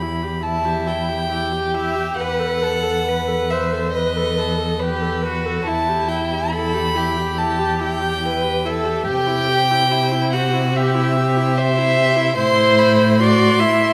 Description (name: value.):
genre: classical, slow romantic movement for string quartet.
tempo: 71 BPM.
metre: 4/4.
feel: uneven beats, rubato.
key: E minor.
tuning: A4 = 440 Hz.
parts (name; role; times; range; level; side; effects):
rich violin; melody; 0.0-13.9 s; B4 to C6; -24 LUFS; equal; none.
dark viola; accompaniment; 0.0-13.9 s; E4 to B4; -27 LUFS; equal; none.
dark cello; bass; 0.0-13.9 s; E2 to C3; -24 LUFS; equal; none.
rich violin; second line; 0.5-13.9 s; E4 to E5; -23 LUFS; equal; none.
room: wet concert hall reverb, RT60 2.4 s.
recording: none.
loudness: -19 LUFS.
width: mono.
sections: 0.0-13.9 A section.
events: none.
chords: 0.0 Em; 2.2 B7/E; 5.7 Em; 9.1 C; 12.4 Am.